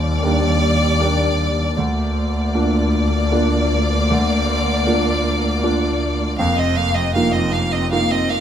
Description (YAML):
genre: neoclassical piano and strings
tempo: 78 BPM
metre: 3/4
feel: rubato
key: Bb major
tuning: A4 = 440 Hz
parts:
  - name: clear chamber violin section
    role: melody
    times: 0.0-8.4 s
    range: D5 to F5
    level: -21 LUFS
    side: left 1 dB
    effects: none
  - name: rich cello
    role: second line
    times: 0.0-8.4 s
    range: G3 to C4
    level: -27 LUFS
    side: right 2 dB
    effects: none
  - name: warm grand piano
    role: accompaniment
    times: 0.0-8.4 s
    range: D2 to G4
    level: -21 LUFS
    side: right 2 dB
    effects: none
  - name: rich double bass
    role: bass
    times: 0.0-8.4 s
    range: F1 to Eb2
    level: -20 LUFS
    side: left 1 dB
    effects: none
room: moderate large studio reverb, RT60 0.8 s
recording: band playing live in one room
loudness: -16 LUFS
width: side -9 dB against mid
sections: 0.0-8.4 A section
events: none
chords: 0.0 Ebmaj7; 1.8 Bb/D; 6.4 F7sus4